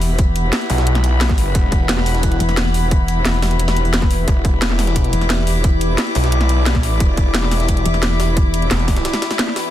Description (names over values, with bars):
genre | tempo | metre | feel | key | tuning
dark technical drum and bass | 176 BPM | 4/4 | straight | E minor | A4 = 440 Hz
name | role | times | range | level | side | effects
deep dark ambient pad | sustained chords | 0.0-9.7 s | E4 to F#5 | -25 LUFS | left 1 dB | chorus, built-in reverb, sidechain pumping
metallic wobble bass | bass | 0.0-8.7 s | E1 | -18 LUFS | equal | chorus
drum and bass drum kit | drums | 0.0-9.6 s | hi-hat, snare drum | -21 LUFS | equal | overdrive
jungle sampler-style drum kit | drums | 0.0-9.6 s | hi-hat, snare drum | -29 LUFS | right 1 dB | high-pass filter on hats, high-pass filter on snare, high-pass filter on room
warm studio string section | texture | 0.0-9.7 s | E4 to D6 | -24 LUFS | left 3 dB | sidechain pumping
electronic kick drum | drums | 0.2-8.9 s | none | -16 LUFS | equal | overdrive
snarling distorted saw bass | bass | 0.7-9.1 s | E1 to B1 | -17 LUFS | equal | overdrive, sidechain pumping
room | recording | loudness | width
little or no reverb | dense, heavily limited modern master | -14 LUFS | side -12 dB against mid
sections
0.0-9.7 A section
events
break 9.1-9.7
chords
0.0 Emadd9